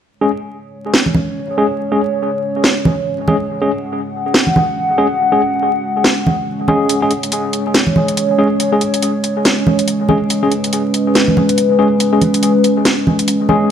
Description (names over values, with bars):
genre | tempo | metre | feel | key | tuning
deep dubstep | 141 BPM | 4/4 | swing 59% on 16ths, half-time | unclear | A4 = 443 Hz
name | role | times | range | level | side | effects
dark analog pad | sustained chords | 0.9-13.7 s | G#3 to F#5 | -16 LUFS | equal | chorus, phaser
tine electric piano | stabs | 0.2-13.7 s | G#3 to G#4 | -18 LUFS | left 1 dB | overdrive, fast stereo tremolo, low-pass filter, dub echo
garage drum kit | drums | 0.9-13.4 s | hi-hat, snare drum | -16 LUFS | right 1 dB | none
congas | percussion | 1.1-13.6 s | none | -18 LUFS | right 2 dB | dub echo
room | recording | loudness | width
wet echo chamber reverb, RT60 1.3 s | vinyl crackle | -12 LUFS | side -8 dB against mid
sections
0.1-13.7 A section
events
none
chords
0.1 C#5